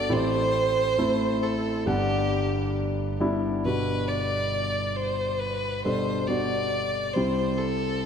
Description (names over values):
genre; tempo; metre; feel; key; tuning
pop; 68 BPM; 4/4; straight; G major; A4 = 441 Hz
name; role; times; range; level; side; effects
clear violin; melody; 0.0-8.1 s; G4 to D5; -27 LUFS; equal; ping-pong delay
warm concert grand piano; accompaniment; 0.0-8.1 s; G1 to F#5; -26 LUFS; equal; none
room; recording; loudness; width
wet lush hall reverb, RT60 1.8 s, small room ambience; dreamy mix soaked in reverb; -23 LUFS; side -7 dB against mid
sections
0.0-3.6 A section; 3.6-8.1 B section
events
none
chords
0.1 Am7; 1.9 Gmaj7; 7.2 C